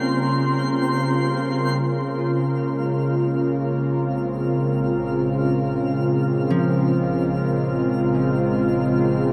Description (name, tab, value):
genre	ambient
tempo	free time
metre	none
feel	none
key	Bb dorian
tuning	A4 = 437 Hz
part	warm analog pad	sustained chords	0.0-9.3 s	Db3 to Bb4	-22 LUFS	equal	lush chorus
part	concert harp	arpeggios	0.0-9.3 s	F3 to F4	-32 LUFS	equal	none
part	twinkling granular texture	texture	0.0-9.3 s	C4 to F6	-32 LUFS	equal	built-in reverb
part	dark studio double bass section	bass	1.8-9.3 s	Bb1	-38 LUFS	equal	none
part	hand-pumped harmonium	drone	1.8-9.3 s	Bb3 to Bb4	-40 LUFS	equal	none
room	wet huge ambient reverb, RT60 9.1 s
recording	none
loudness	-21 LUFS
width	mono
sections	0.0-1.8 A section; 1.8-9.3 B section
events	none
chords	0.0 Eb7 (rootless); 1.8 Bbm9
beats	free time